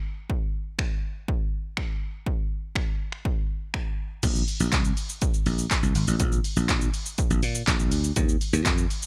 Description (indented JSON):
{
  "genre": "dance-pop",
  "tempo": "122 BPM",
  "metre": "4/4",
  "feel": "straight",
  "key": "Bb major",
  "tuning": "A4 = 440 Hz",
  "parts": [
    { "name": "punchy analog drum machine", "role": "drums", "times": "0.3-9.1 s", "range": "crash cymbal, finger snaps, handclaps, hi-hat, kick drum, shaker", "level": "-28 LUFS", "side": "equal", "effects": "none" },
    { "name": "dry thumbed slap bass", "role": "bass", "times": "4.2-8.8 s", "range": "Ab1 to Bb2", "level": "-27 LUFS", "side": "equal", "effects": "sidechain pumping" }
  ],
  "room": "digital ambience",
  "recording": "none",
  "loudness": "-26 LUFS",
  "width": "mono",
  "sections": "0.0-4.2 A section; 4.2-9.1 B section",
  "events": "none",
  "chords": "none",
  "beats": "| 0.30 0.79 1.28 1.77 | 2.27 2.76 3.25 3.74 | 4.23 4.72 5.22 5.71 | 6.20 6.69 7.18 7.67 | 8.17 8.66"
}